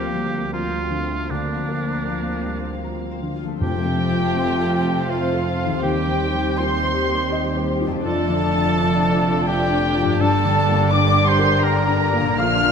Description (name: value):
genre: cinematic, emotional film score for orchestra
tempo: 76-86 BPM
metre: 3/4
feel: rubato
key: unclear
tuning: A4 = 441 Hz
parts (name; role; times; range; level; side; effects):
- muted studio violin section; melody; 0.0-12.7 s; F5 to F6; -26 LUFS; equal; none
- muted studio violin section; second line; 0.0-12.7 s; C4 to D5; -31 LUFS; left 4 dB; none
- warm oboe; second line; 0.0-12.7 s; D4 to F5; -27 LUFS; right 2 dB; none
- felt-muted upright piano; accompaniment; 0.0-12.7 s; Bb1 to Eb5; -26 LUFS; left 2 dB; none
- muted studio viola section; accompaniment; 0.0-12.7 s; D3 to G4; -29 LUFS; right 1 dB; none
- concert harp; arpeggios; 0.0-12.7 s; F2 to D6; -29 LUFS; left 7 dB; none
- muted studio cello section; bass; 0.0-12.7 s; Eb2 to Bb3; -26 LUFS; right 3 dB; none
- muted studio double bass section; bass; 0.0-12.7 s; F1 to Eb2; -28 LUFS; right 4 dB; none
- mellow hollow concert flute; second line; 3.6-12.7 s; F5 to F6; -27 LUFS; left 1 dB; none
- mellow French horn section; sustained chords; 3.6-12.7 s; F3 to D4; -28 LUFS; left 2 dB; none
- timpani; percussion; 3.6-4.7 s; F2; -27 LUFS; left 1 dB; none
room: moderate scoring stage reverb, RT60 1.5 s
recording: none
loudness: -18 LUFS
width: side -6 dB against mid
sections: 0.0-3.6 A section; 3.6-12.7 B section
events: none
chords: 0.0 Bbadd9/D; 3.6 F; 5.8 Cm/Eb; 8.0 Dm/F; 10.2 Gm